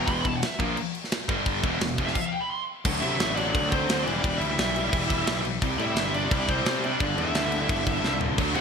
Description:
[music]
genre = heavy metal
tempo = 173 BPM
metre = 4/4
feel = straight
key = E minor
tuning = A4 = 440 Hz
[part]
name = high-gain lead guitar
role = melody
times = 0.0-8.6 s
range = C5 to C6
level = -30 LUFS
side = equal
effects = distortion, digital delay
[part]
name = distorted electric guitar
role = riff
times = 0.0-8.6 s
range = E2 to A#3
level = -32 LUFS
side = right 12 dB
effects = distortion
[part]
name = distorted electric guitar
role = riff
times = 0.0-2.2, 8.4-8.6 s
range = E2 to F#4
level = -33 LUFS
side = right 1 dB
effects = distortion
[part]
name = heavy high-gain guitar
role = riff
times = 0.0-8.6 s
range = E2 to A#3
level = -31 LUFS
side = left 13 dB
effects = distortion
[part]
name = fuzz picked electric bass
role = bass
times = 0.0-8.6 s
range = E1 to C3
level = -31 LUFS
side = equal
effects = overdrive
[part]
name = tight metal drum kit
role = drums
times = 0.1-8.6 s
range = crash cymbal, kick drum, snare drum, toms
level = -29 LUFS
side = equal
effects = gated reverb
[part]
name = high-gain lead guitar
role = second line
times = 3.0-8.6 s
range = C4 to F#4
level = -34 LUFS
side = right 3 dB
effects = distortion
[sound]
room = moderate plate reverb, RT60 1.7 s, small room ambience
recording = bright 1980s-style digital production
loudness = -23 LUFS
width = side -6 dB against mid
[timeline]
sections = 0.0-2.9 A section; 2.9-8.6 B section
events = lead electric guitar solo 0.0-2.9; stop 2.2-2.9; drum fill 8.0-8.4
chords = 0.0 E5; 1.3 G5; 1.6 E5; 2.0 F5; 2.3 N.C.; 2.9 D; 4.1 Em; 5.6 C; 7.0 G5

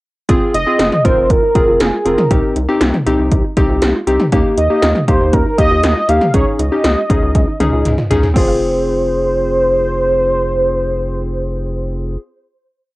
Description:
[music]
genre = synth-pop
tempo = 119 BPM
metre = 4/4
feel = straight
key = F minor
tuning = A4 = 440 Hz
[part]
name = warm analog keys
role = accompaniment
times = 0.3-12.2 s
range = Bb3 to Bb4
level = -17 LUFS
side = left 1 dB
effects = chorus, cassette tape
[part]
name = soft round pluck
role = arpeggios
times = 0.3-12.3 s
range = C4 to F5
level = -27 LUFS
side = right 2 dB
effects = none
[part]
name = rubbery square bass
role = bass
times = 0.3-12.2 s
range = F1 to Eb2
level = -20 LUFS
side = equal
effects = none
[part]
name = 80s electronic pad drums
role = drums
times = 0.3-8.5 s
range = crash cymbal, hi-hat, kick drum, snare drum, toms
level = -15 LUFS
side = equal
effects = gated reverb on snare and toms, cassette tape
[part]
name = warm velvety synth lead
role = melody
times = 0.5-12.2 s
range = Ab4 to F5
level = -16 LUFS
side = right 1 dB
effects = chorus
[sound]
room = moderate small room reverb, RT60 0.6 s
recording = home recording on cassette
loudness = -12 LUFS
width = side -19 dB against mid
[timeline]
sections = 0.3-8.4 verse; 8.4-12.4 final chord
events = drum fill 7.3-8.4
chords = 0.3 Fm7; 2.3 Cm; 4.3 Ebadd9; 6.3 Dbsus2; 8.4 Fm

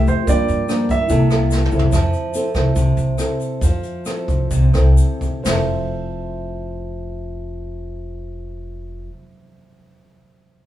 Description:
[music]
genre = bossa nova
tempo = 123-145 BPM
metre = 4/4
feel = straight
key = F major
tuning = A4 = 440 Hz
[part]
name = warm baby grand piano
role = melody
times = 0.0-1.7 s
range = C5 to E5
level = -22 LUFS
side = right 6 dB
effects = none
[part]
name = nylon-string guitar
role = accompaniment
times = 0.0-9.2 s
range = G2 to A4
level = -23 LUFS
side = left 1 dB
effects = none
[part]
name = tine electric piano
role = accompaniment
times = 0.0-10.7 s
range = E4 to E6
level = -28 LUFS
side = right 2 dB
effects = none
[part]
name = upright bass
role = bass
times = 0.0-9.1 s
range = F1 to G2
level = -19 LUFS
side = equal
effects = none
[part]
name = jazz brush drum kit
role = drums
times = 0.1-5.6 s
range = hi-hat, kick drum, rim click, snare drum, toms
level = -23 LUFS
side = equal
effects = none
[part]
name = egg shaker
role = percussion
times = 0.1-5.6 s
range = none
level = -37 LUFS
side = left 6 dB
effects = none
[sound]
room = light reverb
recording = band playing live in one room, small room ambience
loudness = -16 LUFS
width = side -13 dB against mid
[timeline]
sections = 0.0-1.9 A section; 1.9-5.5 B section; 5.5-9.4 C section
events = drum fill 1.5-1.9; slowing down 1.9-5.5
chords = 0.3 Gm7; 1.1 C13; 1.9 Fmaj7

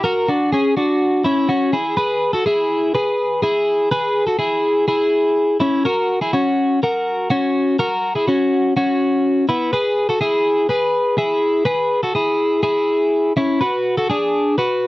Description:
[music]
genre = indie pop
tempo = 124 BPM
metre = 4/4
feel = straight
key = unclear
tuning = A4 = 439 Hz
[part]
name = twelve-string electric guitar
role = solo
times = 0.0-14.9 s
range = B3 to B4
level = -16 LUFS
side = left 1 dB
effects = none
[sound]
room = light reverb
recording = dry, close 1970s-style studio recording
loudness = -16 LUFS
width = side -18 dB against mid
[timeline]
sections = 0.0-2.0 A section; 2.0-14.9 B section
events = none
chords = 0.0 F#; 2.0 E; 5.9 F#; 9.5 E; 13.6 Bm

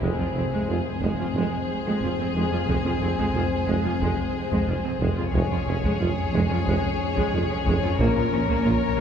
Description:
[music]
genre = cinematic, epic orchestral film score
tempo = 90 BPM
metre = 4/4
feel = straight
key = F minor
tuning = A4 = 441 Hz
[part]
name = warm symphonic violin section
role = melody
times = 0.0-9.0 s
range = C5 to Db5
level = -33 LUFS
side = left 7 dB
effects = none
[part]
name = rich symphonic violin section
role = second line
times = 0.0-9.0 s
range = Ab4 to Bb4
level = -31 LUFS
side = left 4 dB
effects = none
[part]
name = rich symphonic viola section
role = accompaniment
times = 0.0-9.0 s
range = Ab3 to F4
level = -29 LUFS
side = right 1 dB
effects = none
[part]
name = mellow French horn section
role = sustained chords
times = 0.0-9.0 s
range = Ab3 to Db4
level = -32 LUFS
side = equal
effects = none
[part]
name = rich symphonic cello section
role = bass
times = 0.0-9.0 s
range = F2 to Bb2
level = -29 LUFS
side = right 2 dB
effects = none
[part]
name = rich symphonic double bass section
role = bass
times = 0.0-8.7 s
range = F1 to Bb1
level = -30 LUFS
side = right 2 dB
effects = none
[part]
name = warm tuba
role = bass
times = 0.0-9.0 s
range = F1 to Bb1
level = -30 LUFS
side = right 2 dB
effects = none
[part]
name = taiko ensemble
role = drums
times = 0.0-9.0 s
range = none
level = -31 LUFS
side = equal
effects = none
[sound]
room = wet cathedral reverb, RT60 5.2 s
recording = recorded in a church or concert hall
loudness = -22 LUFS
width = side -8 dB against mid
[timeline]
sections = 0.0-9.0 A section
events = none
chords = 0.0 Fm; 5.3 Db/F; 8.0 Bbm

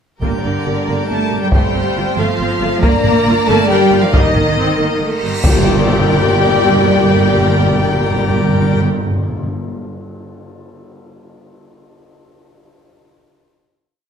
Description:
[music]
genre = cinematic, epic orchestral film score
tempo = 138 BPM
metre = 3/4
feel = straight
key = G minor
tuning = A4 = 437 Hz
[part]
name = warm symphonic violin section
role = melody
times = 0.2-8.8 s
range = Bb4 to Eb5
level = -23 LUFS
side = left 4 dB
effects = none
[part]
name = warm studio violin section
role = second line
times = 0.2-8.8 s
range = Bb4 to Bb5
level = -21 LUFS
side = left 4 dB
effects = none
[part]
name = warm symphonic viola section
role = accompaniment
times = 0.2-8.8 s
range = G3 to G4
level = -22 LUFS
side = right 1 dB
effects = none
[part]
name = mellow French horn section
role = sustained chords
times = 0.2-8.8 s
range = Bb3 to Bb4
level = -21 LUFS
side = left 5 dB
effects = none
[part]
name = pipe organ, plenum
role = sustained chords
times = 0.2-8.8 s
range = G3 to G5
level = -22 LUFS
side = right 1 dB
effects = none
[part]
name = dark symphonic cello section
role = bass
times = 0.2-8.8 s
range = Bb2 to Bb3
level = -19 LUFS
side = right 4 dB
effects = none
[part]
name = warm symphonic double bass section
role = bass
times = 0.2-8.8 s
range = G1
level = -22 LUFS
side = right 4 dB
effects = none
[part]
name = solo taiko drums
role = drums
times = 0.2-6.3 s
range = none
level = -16 LUFS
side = equal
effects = none
[part]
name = timpani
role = percussion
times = 0.2-9.5 s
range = G2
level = -21 LUFS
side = left 1 dB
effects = none
[part]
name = cymbal swell and tam-tam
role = percussion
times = 2.8-7.1 s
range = none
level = -24 LUFS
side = left 2 dB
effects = none
[part]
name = cymbal swell and impact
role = sound effects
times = 5.1-6.7 s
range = none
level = -23 LUFS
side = equal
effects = none
[sound]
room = moderate scoring stage reverb, RT60 1.4 s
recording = none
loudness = -12 LUFS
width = side -7 dB against mid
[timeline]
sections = 0.2-5.4 theme; 5.4-8.1 final chord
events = cymbal swell 5.1-5.4; band accent 5.4-5.9; impact 5.4-6.7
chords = 0.2 Gm; 1.5 F/G; 2.8 Bb/G; 4.1 Eb/G; 5.4 Gm

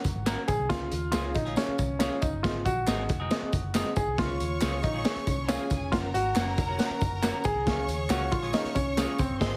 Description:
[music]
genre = uptempo 1960s-style soul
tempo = 138 BPM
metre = 4/4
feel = straight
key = Db major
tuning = A4 = 440 Hz
[part]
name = warm baby grand piano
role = melody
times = 0.0-9.6 s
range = C4 to Ab4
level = -34 LUFS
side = equal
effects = none
[part]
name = overdriven reed electric piano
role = accompaniment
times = 0.0-9.6 s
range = Ab2 to Gb5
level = -38 LUFS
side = equal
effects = fast tremolo
[part]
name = vintage muted picked electric bass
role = bass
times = 0.0-9.6 s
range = F1 to Eb2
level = -36 LUFS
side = equal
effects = none
[part]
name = crunchy breakbeat drum kit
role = drums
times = 0.0-9.5 s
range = hi-hat, kick drum, snare drum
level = -32 LUFS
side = equal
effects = none
[part]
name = tambourine and handclaps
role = percussion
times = 0.0-9.5 s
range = none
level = -44 LUFS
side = equal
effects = none
[part]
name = semi-hollow electric guitar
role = stabs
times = 0.3-9.1 s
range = Ab3 to Bb4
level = -41 LUFS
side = equal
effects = spring reverb
[part]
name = rich studio violin section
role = second line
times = 4.2-9.6 s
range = Ab4 to Db6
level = -38 LUFS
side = equal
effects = none
[sound]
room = light reverb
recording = heavily compressed radio sound, multiband compression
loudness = -28 LUFS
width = mono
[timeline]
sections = 0.0-9.6 A section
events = none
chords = 0.0 Gb; 0.7 Db; 2.4 Ab; 4.2 Db; 5.9 Gb; 7.7 Db

